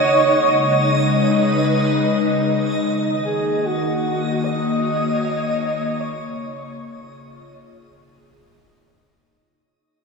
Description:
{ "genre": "ambient", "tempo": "75 BPM", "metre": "4/4", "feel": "straight", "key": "unclear", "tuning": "A4 = 440 Hz", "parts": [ { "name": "breathy flute-like synth lead", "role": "melody", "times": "0.0-8.5 s", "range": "F#4 to D#5", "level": "-22 LUFS", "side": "right 1 dB", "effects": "lush chorus, diffuse ambient delay" }, { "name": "airy breathy pad", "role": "sustained chords", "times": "0.0-9.3 s", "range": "C#3 to D#5", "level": "-21 LUFS", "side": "left 2 dB", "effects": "chorus" }, { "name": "backwards swelling texture", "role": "texture", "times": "0.0-9.3 s", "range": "D#4 to D#5", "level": "-23 LUFS", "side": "right 1 dB", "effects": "built-in reverb" } ], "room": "wet huge ambient reverb, RT60 8.6 s", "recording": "small room ambience", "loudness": "-17 LUFS", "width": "side -4 dB against mid", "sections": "0.0-9.3 A section", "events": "fade-out 0.7-9.3", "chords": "0.0 C#5; 2.8 D#m7; 6.0 A#m7/C#" }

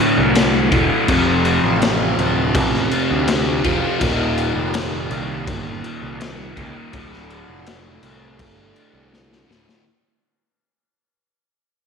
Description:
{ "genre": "psychedelic rock", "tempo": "82 BPM", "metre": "4/4", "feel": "straight", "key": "unclear", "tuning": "A4 = 440 Hz", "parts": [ { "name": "fuzz guitar", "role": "riff", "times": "0.0-9.8 s", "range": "D2 to F3", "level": "-19 LUFS", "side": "equal", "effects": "distortion, phaser" }, { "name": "fuzz picked electric bass", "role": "bass", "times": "0.2-9.6 s", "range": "D1 to D2", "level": "-23 LUFS", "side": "right 1 dB", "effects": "overdrive" }, { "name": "raw garage drum kit", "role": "drums", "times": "0.4-9.8 s", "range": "crash cymbal, kick drum, snare drum", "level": "-22 LUFS", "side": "left 3 dB", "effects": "none" } ], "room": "moderate echo chamber reverb, RT60 1.7 s, small room reverb", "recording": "1960s-style stereo", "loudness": "-16 LUFS", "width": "side -6 dB against mid", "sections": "0.0-9.9 A section", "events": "fade-out 0.0-9.9; drum fill 9.1-9.9", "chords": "0.0 D5; 1.1 F; 4.0 Ebsus2; 6.9 Dm7" }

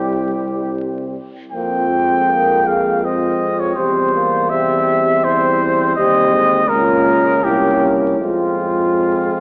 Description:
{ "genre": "classical, hymn-like piece for brass band", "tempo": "81 BPM", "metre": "3/4", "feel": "uneven beats, rubato", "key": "F minor", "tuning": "A4 = 440 Hz", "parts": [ { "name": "warm cornet", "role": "melody", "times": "0.0-9.4 s", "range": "F4 to G5", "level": "-19 LUFS", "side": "equal", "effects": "none" }, { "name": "mellow French horn section", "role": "second line", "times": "0.0-9.4 s", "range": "E4 to Bb4", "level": "-24 LUFS", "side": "equal", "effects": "none" }, { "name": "clear euphonium", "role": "accompaniment", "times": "0.0-9.4 s", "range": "Bb3 to Db4", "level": "-24 LUFS", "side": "equal", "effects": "none" }, { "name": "warm trombone", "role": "accompaniment", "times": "0.0-9.4 s", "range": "G3 to Bb3", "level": "-27 LUFS", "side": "equal", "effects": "none" }, { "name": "mellow tuba", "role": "bass", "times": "0.0-9.4 s", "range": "C2 to F2", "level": "-26 LUFS", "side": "equal", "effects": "none" } ], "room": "wet church reverb, RT60 3.2 s", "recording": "vinyl crackle, AM radio sound", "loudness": "-16 LUFS", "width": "mono", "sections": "0.0-9.4 A section", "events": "none", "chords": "0.0 C; 1.5 Fm; 3.8 C/E; 6.0 Cm/Eb; 6.7 Bbm/Db; 7.4 C7b9; 8.2 Fm" }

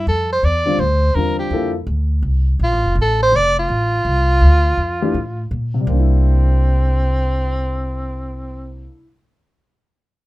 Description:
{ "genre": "modal jazz", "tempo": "165 BPM", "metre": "4/4", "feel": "swing 63% on 8ths", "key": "C mixolydian", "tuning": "A4 = 440 Hz", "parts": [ { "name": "clear soprano saxophone", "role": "melody", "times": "0.0-8.9 s", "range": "C4 to D5", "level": "-19 LUFS", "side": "right 1 dB", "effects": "none" }, { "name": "upright bass", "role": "bass", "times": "0.0-8.8 s", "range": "F1 to Bb2", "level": "-17 LUFS", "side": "equal", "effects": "none" }, { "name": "dark concert grand piano", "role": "accompaniment", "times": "0.7-1.7, 5.0-9.0 s", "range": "C3 to A4", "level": "-22 LUFS", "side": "left 2 dB", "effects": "none" } ], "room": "light reverb", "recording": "minimal, uncompressed stereo recording", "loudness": "-15 LUFS", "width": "side -17 dB against mid", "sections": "0.0-5.9 A section; 5.9-8.8 B section", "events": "none", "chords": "0.1 Dmadd9; 5.9 C7" }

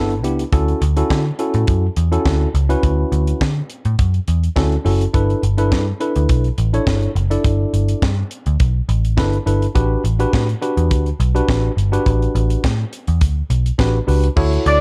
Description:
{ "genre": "early-eighties boogie funk", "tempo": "104 BPM", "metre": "4/4", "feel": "straight", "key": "unclear", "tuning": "A4 = 439 Hz", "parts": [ { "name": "tine electric piano", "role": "accompaniment", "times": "0.0-14.8 s", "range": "B3 to D5", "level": "-23 LUFS", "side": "equal", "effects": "overdrive" }, { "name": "vintage muted picked electric bass", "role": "bass", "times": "0.0-14.8 s", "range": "F#1 to D3", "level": "-19 LUFS", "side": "equal", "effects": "none" }, { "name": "tight funk drum kit", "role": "drums", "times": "0.1-14.8 s", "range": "crash cymbal, hi-hat, kick drum, snare drum", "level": "-23 LUFS", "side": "equal", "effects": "none" }, { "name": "fat analog lead", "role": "melody", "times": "14.7-14.8 s", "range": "D5", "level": "-15 LUFS", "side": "equal", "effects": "none" } ], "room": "little or no reverb", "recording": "dark, warm production", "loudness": "-17 LUFS", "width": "mono", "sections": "0.0-14.4 A section", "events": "none", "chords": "0.0 G69; 0.5 Dmaj9; 5.1 G69; 9.8 A13sus4" }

